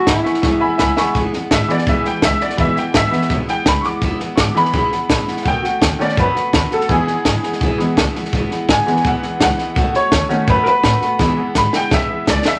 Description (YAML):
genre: rockabilly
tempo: 167 BPM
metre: 4/4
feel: straight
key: E major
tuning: A4 = 441 Hz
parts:
  - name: electric guitar through a small old amp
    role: melody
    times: 0.0-0.9 s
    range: E4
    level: -20 LUFS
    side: equal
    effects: none
  - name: picked steel-string acoustic guitar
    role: accompaniment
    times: 0.0-12.6 s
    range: E2 to F#4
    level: -26 LUFS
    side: equal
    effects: none
  - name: honky-tonk upright piano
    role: accompaniment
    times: 0.1-12.6 s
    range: D#3 to D6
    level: -20 LUFS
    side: equal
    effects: none
  - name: upright bass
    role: bass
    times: 0.1-12.5 s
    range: E1 to A2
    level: -25 LUFS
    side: equal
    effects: none
  - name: compact cocktail drum kit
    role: drums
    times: 0.1-12.5 s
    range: hi-hat, kick drum, snare drum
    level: -21 LUFS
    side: equal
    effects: none
room: moderate club reverb, RT60 0.8 s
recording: none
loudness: -16 LUFS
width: mono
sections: 0.0-1.1 A section; 1.1-12.6 B section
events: drum fill 0.4-1.1, 11.2-12.6; honky-tonk piano fill 0.4-1.1; honky-tonk piano solo 1.1-12.6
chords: 0.0 E; 5.5 B7; 6.9 E; 9.8 B7; 11.2 E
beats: 0.07 0.43 0.79 | 1.15 1.51 1.87 2.22 | 2.58 2.94 3.30 3.66 | 4.02 4.38 4.74 5.09 | 5.45 5.81 6.17 6.53 | 6.89 7.25 7.61 7.96 | 8.32 8.68 9.04 9.40 | 9.76 10.12 10.48 10.84 | 11.20 11.55 11.91 12.27